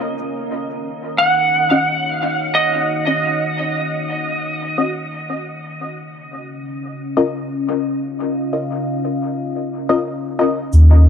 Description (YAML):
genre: ambient dub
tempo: 88 BPM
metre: 4/4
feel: swing 54% on 16ths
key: unclear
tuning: A4 = 439 Hz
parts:
  - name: deep dark ambient pad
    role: sustained chords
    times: 0.0-11.1 s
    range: Db4 to Gb5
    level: -24 LUFS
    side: left 2 dB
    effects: chorus, built-in reverb
  - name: electric slide guitar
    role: melody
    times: 1.2-4.9 s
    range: Eb5 to Gb5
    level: -18 LUFS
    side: right 1 dB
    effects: dub echo
  - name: filtered dub chord stab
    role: stabs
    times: 1.7-10.6 s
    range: Db4 to Eb5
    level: -22 LUFS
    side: left 3 dB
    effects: lush chorus, vintage 12-bit sampler grit, dub echo
  - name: soft dub sub bass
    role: bass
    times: 10.7-11.1 s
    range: Eb2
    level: -6 LUFS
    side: equal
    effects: none
  - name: shaker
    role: drums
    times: 10.7-10.9 s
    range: none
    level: -45 LUFS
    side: left 2 dB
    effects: none
room: moderate spring reverb, RT60 2.1 s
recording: dark, warm production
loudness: -17 LUFS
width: side -8 dB against mid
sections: 0.0-10.7 A section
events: filter sweep on ambient pad 0.0-10.7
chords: 0.0 Ebm7; 5.3 Db69